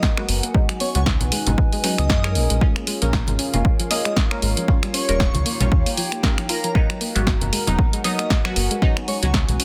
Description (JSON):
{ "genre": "deep house", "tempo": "116 BPM", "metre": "4/4", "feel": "swing 57% on 16ths", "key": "G# dorian", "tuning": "A4 = 440 Hz", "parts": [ { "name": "dark analog pad", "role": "sustained chords", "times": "0.0-9.6 s", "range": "D#4 to C#5", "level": "-37 LUFS", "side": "equal", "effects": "chorus, sidechain pumping" }, { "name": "soft round pluck", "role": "arpeggios", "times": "0.0-9.6 s", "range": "E#3 to E#4", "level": "-32 LUFS", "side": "equal", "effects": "chorus, cassette tape, sidechain pumping, tape echo" }, { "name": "filtered dub chord stab", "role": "stabs", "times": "0.0-9.4 s", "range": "F#3 to A#4", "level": "-31 LUFS", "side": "equal", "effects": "phaser, lush chorus, sidechain pumping, delay" }, { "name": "electronic kick drum", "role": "drums", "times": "0.0-9.5 s", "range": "none", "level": "-22 LUFS", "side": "equal", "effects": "none" }, { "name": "punchy analog drum machine", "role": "drums", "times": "0.0-9.6 s", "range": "finger snaps, hi-hat, snare drum", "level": "-26 LUFS", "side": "equal", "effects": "none" }, { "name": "warbly tape-like pad", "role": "texture", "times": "0.0-9.6 s", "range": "C#4 to A#5", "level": "-34 LUFS", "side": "equal", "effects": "chorus, built-in reverb, sidechain pumping" }, { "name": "sub bass with octave", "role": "bass", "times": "0.3-9.6 s", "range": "D#1 to F#2", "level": "-24 LUFS", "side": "equal", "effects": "sidechain pumping" }, { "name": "airy dreamy lead", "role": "melody", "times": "0.8-9.3 s", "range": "A#4 to D#5", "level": "-31 LUFS", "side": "equal", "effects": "chorus, delay" }, { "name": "congas", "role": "percussion", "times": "1.2-9.6 s", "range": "none", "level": "-30 LUFS", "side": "equal", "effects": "none" } ], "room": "light reverb, digital ambience", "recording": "dense, heavily limited modern master", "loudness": "-20 LUFS", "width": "mono", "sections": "0.0-9.6 A section", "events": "none", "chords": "0.0 G#m9; 0.5 C#7sus4; 2.4 A#m7; 4.7 D#9; 6.8 G#m9; 8.8 C#7sus4", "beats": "0.03 | 0.55 1.06 1.58 2.10 | 2.61 3.13 3.65 4.17 | 4.68 5.20 5.72 6.24 | 6.75 7.27 7.79 8.30 | 8.82 9.34" }